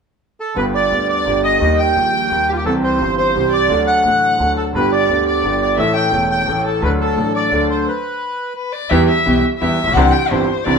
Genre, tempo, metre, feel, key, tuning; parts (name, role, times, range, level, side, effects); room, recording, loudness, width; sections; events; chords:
tango; 172 BPM; 3/4; rubato; G major; A4 = 440 Hz
bandoneon; melody; 0.4-8.5 s; F4 to G5; -18 LUFS; right 2 dB
bright grand piano; accompaniment; 0.5-10.8 s; E1 to A4; -17 LUFS; right 1 dB
warm violin; second line; 0.6-10.8 s; F4 to G5; -20 LUFS; left 4 dB
upright bass; bass; 0.6-10.8 s; E1 to E2; -24 LUFS; equal
clear studio string section; stabs; 8.9-10.8 s; B3 to G4; -24 LUFS; left 3 dB
wet studio reverb, RT60 0.9 s; band playing live in one room; -14 LUFS; side -5 dB against mid
0.6-8.9 A section; 8.9-10.8 B section
stop 7.9-8.9; violin solo 8.9-10.8
0.0 N.C.; 0.6 G; 1.6 Eb; 2.7 C; 3.7 D; 4.7 G; 5.8 A; 6.8 D; 7.9 N.C.; 8.9 Em; 10.0 Cadd9